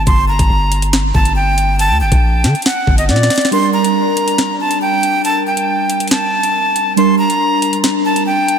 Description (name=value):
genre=hip hop, drill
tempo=139 BPM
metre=4/4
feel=half-time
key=G minor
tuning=A4 = 440 Hz
part: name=breathy bright jazz flute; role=melody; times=0.0-8.6 s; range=D5 to C6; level=-15 LUFS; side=right 1 dB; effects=tape echo
part: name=long sustained 808-style bass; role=bass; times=0.0-3.3 s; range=G1 to D3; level=-15 LUFS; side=equal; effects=none
part: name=drill drum kit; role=drums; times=0.1-8.6 s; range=hi-hat, kick drum, snare drum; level=-17 LUFS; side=equal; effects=none
part: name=muted felt-like synth keys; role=accompaniment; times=3.5-8.6 s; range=G3 to Bb4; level=-16 LUFS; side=right 1 dB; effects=chorus, phaser
room=moderate huge ambient reverb, RT60 4.3 s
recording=dreamy mix soaked in reverb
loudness=-11 LUFS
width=side -7 dB against mid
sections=0.0-8.6 A section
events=drum fill 3.1-3.5; kick muted 3.5-8.6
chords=0.0 Gm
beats=| 0.07 0.50 0.93 1.36 | 1.79 2.23 2.66 3.09 | 3.52 3.95 4.38 4.82 | 5.25 5.68 6.11 6.54 | 6.97 7.41 7.84 8.27